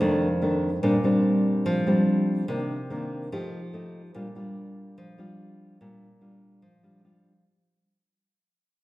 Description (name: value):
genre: bossa nova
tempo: 145 BPM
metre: 4/4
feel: straight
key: Bb major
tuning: A4 = 441 Hz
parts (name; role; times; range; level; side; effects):
- nylon-string guitar; solo; 0.0-7.4 s; F2 to G4; -24 LUFS; equal; none
room: wet recital hall reverb, RT60 1.7 s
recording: recorded in a church or concert hall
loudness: -22 LUFS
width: side -17 dB against mid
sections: 0.0-7.5 A section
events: fade-out 0.0-7.5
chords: 0.0 F6; 0.8 Bb69; 2.5 Cm9; 3.3 F9; 4.1 Bb6